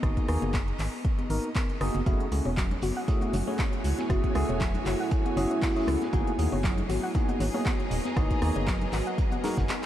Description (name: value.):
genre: deep house.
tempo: 118 BPM.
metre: 4/4.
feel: swing 55% on 16ths.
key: unclear.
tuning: A4 = 440 Hz.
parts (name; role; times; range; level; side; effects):
bell-like tine electric piano; stabs; 0.0-9.6 s; A3 to A#4; -32 LUFS; equal; phaser, sidechain pumping, tape echo.
organ-like FM bass; bass; 0.0-9.7 s; D#1 to D#2; -30 LUFS; equal; sidechain pumping.
deep house drum kit; drums; 0.0-9.9 s; handclaps, hi-hat, rim click; -37 LUFS; equal; studio reverb.
electronic kick drum; drums; 0.0-9.7 s; none; -28 LUFS; equal; studio reverb.
clear studio string section; texture; 0.0-9.9 s; F#4 to A#5; -39 LUFS; equal; sidechain pumping.
congas; percussion; 0.4-9.8 s; none; -38 LUFS; left 3 dB; none.
deep dark ambient pad; sustained chords; 3.4-9.9 s; A3 to A#5; -35 LUFS; right 2 dB; chorus, built-in reverb, sidechain pumping.
soft round pluck; arpeggios; 2.1-9.6 s; F#3 to F#5; -36 LUFS; left 2 dB; chorus, sidechain pumping, analog delay.
cloth-damped thuddy drum kit; drums; 2.1-9.8 s; hi-hat, snare drum; -48 LUFS; right 1 dB; none.
room: moderate huge ambient reverb, RT60 7.8 s.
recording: dreamy mix soaked in reverb.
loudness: -25 LUFS.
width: side -12 dB against mid.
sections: 0.0-9.9 A section.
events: fade-in on string section 0.0-9.9; break 9.7.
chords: 0.0 G#m9; 2.1 F#m9; 6.1 G#m9.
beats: | 0.03 0.54 1.05 1.56 | 2.06 2.57 3.08 3.59 | 4.10 4.61 5.12 5.62 | 6.13 6.64 7.15 7.66 | 8.17 8.68 9.18 9.69.